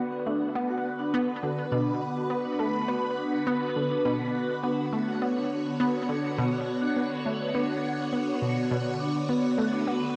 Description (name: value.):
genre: ambient, sequencer-driven space music.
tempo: 103 BPM.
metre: 4/4.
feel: straight.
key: B minor.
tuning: A4 = 441 Hz.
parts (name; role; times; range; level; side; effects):
phased string machine; sustained chords; 0.0-10.2 s; D3 to C#5; -33 LUFS; equal; ensemble chorus, phaser, cassette tape.
vibraphone with medium mallets; arpeggios; 0.0-10.2 s; B3 to C#5; -34 LUFS; equal; cassette tape, delay.
analog pluck; riff; 0.0-10.0 s; B2 to B3; -33 LUFS; equal; chorus, cassette tape, delay.
pulsing gated texture; texture; 9.7-10.2 s; none; barely audible; none; none.
room: wet spring reverb, RT60 2.2 s.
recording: home recording on cassette.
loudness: -28 LUFS.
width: mono.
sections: 0.0-10.2 A section.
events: none.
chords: 0.0 Bmadd9.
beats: 0.56 1.14 | 1.72 2.30 2.89 3.47 | 4.05 4.63 5.22 5.80 | 6.38 6.96 7.55 8.13 | 8.71 9.29 9.88.